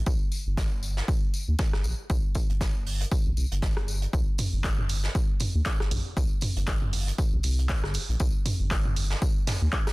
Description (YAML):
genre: acid house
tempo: 118 BPM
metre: 4/4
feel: swing 56% on 16ths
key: unclear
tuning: A4 = 435 Hz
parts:
  - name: round analog bass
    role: bass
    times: 0.0-9.7 s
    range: G1 to Eb2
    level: -27 LUFS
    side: equal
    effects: tube saturation, sidechain pumping
  - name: electronic kick drum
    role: drums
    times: 0.1-9.8 s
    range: none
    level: -27 LUFS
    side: equal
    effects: studio reverb
  - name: vintage brush drum kit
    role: drums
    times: 0.1-9.9 s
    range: hi-hat, snare drum, tambourine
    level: -38 LUFS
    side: equal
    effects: sidechain pumping on hats, high-pass filter on hats, studio reverb, soft clipping on snare, high-pass filter on snare, sidechain pumping on perc, high-pass filter on perc, high-pass filter on room
  - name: punchy analog drum machine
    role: drums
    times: 1.7-9.9 s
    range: handclaps, hi-hat, rim click, toms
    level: -31 LUFS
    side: right 1 dB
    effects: studio reverb
room: small room ambience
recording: dense, heavily limited modern master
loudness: -24 LUFS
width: side -22 dB against mid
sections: 0.0-9.9 A section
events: none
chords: none